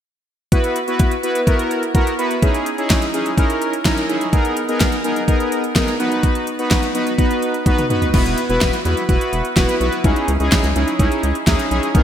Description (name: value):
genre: synth-pop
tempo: 126 BPM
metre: 4/4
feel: straight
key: C# dorian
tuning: A4 = 438 Hz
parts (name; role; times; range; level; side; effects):
- analog synth brass; accompaniment; 0.5-12.0 s; B3 to B4; -18 LUFS; equal; chorus
- pop drum kit; drums; 0.5-12.0 s; crash cymbal, hi-hat, kick drum, snare drum, toms; -18 LUFS; equal; gated reverb
- rubbery square bass; bass; 8.1-12.0 s; E1 to E2; -20 LUFS; equal; none
room: moderate lush hall reverb, RT60 1.8 s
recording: bright 1980s-style digital production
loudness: -15 LUFS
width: side -10 dB against mid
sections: 0.5-12.0 A section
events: drum fill 7.7-8.1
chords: 0.5 Esus2; 2.4 C#madd9; 4.3 G#madd9/B; 6.0 B; 8.1 Esus2; 10.0 C#madd9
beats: | 0.52 1.00 1.47 1.95 | 2.42 2.90 3.38 3.85 | 4.33 4.80 5.28 5.76 | 6.23 6.71 7.19 7.66 | 8.14 8.62 9.09 9.57 | 10.04 10.52 11.00 11.47 | 11.95